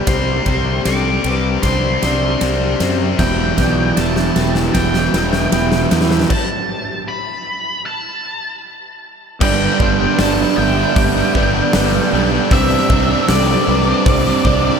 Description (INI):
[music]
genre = post-rock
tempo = 77 BPM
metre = 4/4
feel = straight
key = G major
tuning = A4 = 440 Hz
[part]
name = octave-fuzz lead guitar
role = melody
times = 0.0-14.8 s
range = D5 to D6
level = -22 LUFS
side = left 1 dB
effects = distortion, diffuse ambient delay
[part]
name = granular cloud pad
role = sustained chords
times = 0.0-14.8 s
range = G3 to G5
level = -28 LUFS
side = equal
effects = none
[part]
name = clean electric guitar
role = arpeggios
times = 0.0-14.8 s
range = G2 to D4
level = -27 LUFS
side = left 1 dB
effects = none
[part]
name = distorted electric guitar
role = riff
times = 0.0-14.8 s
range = E2 to D4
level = -22 LUFS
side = left 10 dB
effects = distortion
[part]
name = vibraphone with medium hard mallets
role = arpeggios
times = 0.1-14.8 s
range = A4 to C6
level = -26 LUFS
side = right 1 dB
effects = diffuse ambient delay
[part]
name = fuzz fingered electric bass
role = bass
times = 0.1-14.7 s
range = E1 to F#2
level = -20 LUFS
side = equal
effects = overdrive
[part]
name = huge arena drum kit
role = drums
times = 0.1-14.6 s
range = crash cymbal, hi-hat, kick drum, ride cymbal, snare drum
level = -19 LUFS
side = equal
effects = none
[part]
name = overdriven semi-hollow guitar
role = riff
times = 3.2-14.8 s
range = E2 to D4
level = -19 LUFS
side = right 11 dB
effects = none
[sound]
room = moderate lush hall reverb, RT60 2.6 s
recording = dreamy mix soaked in reverb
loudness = -13 LUFS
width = side -6 dB against mid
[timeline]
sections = 0.0-9.4 A section; 9.4-14.8 B section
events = build-up 0.0-9.4; drum fill 0.0-6.3; stop 6.3-9.4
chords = 0.1 Csus2; 3.2 Em; 6.3 N.C.; 9.4 G; 12.5 Csus2